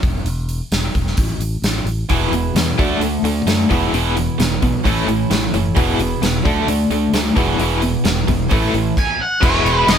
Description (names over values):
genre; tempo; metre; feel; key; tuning
classic rock; 131 BPM; 4/4; straight; E mixolydian; A4 = 438 Hz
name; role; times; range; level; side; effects
modern bright fingered electric bass; bass; 0.0-10.0 s; E1 to F#2; -22 LUFS; equal; none
gated 80s drum kit; drums; 0.0-10.0 s; crash cymbal, hi-hat, kick drum, snare drum; -20 LUFS; equal; none
picked steel-string acoustic guitar; accompaniment; 2.1-10.0 s; E2 to F#4; -26 LUFS; right 3 dB; none
overdriven electric guitar; riff; 2.1-10.0 s; E2 to E4; -21 LUFS; left 7 dB; tremolo
tight distorted guitar; riff; 2.1-10.0 s; E2 to E4; -21 LUFS; right 6 dB; distortion
octave-fuzz lead guitar; melody; 9.0-10.0 s; C#5 to G#5; -17 LUFS; right 1 dB; distortion
tonewheel organ; sustained chords; 9.4-10.0 s; B3 to B4; -30 LUFS; equal; none
room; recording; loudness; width
moderate stone room reverb, RT60 1.0 s; band playing live in one room; -15 LUFS; side -8 dB against mid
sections
0.0-9.4 A section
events
none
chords
0.0 N.C.; 2.1 E; 2.8 D; 3.7 E; 4.8 A; 5.8 E; 6.5 D; 7.4 E; 8.5 A; 9.0 N.C.; 9.4 E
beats
| 0.26 0.72 1.18 1.64 | 2.10 2.56 3.02 3.47 | 3.93 4.39 4.85 5.31 | 5.76 6.22 6.68 7.14 | 7.59 8.05 8.51 8.96 | 9.42 9.87